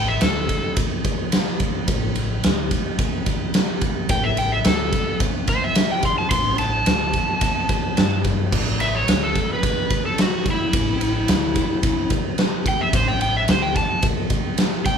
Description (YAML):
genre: blues rock power trio and southern rock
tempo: 108 BPM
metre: 4/4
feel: straight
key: unclear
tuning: A4 = 437 Hz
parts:
  - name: overdriven slide guitar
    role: melody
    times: 0.0-0.8, 4.1-15.0 s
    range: E4 to C6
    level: -22 LUFS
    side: equal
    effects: none
  - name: growling fingered electric bass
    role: bass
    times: 0.0-13.7 s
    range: A1 to G2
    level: -25 LUFS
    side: left 1 dB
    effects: overdrive
  - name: big rock drum kit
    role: drums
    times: 0.2-15.0 s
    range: crash cymbal, kick drum, ride cymbal, snare drum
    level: -20 LUFS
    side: equal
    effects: none
room: moderate large studio reverb, RT60 0.8 s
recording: band playing live in one room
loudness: -18 LUFS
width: side -7 dB against mid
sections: 0.0-15.0 A section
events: electric slide guitar solo 0.0-15.0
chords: 0.0 Asus4; 8.0 Gsus2; 8.5 A5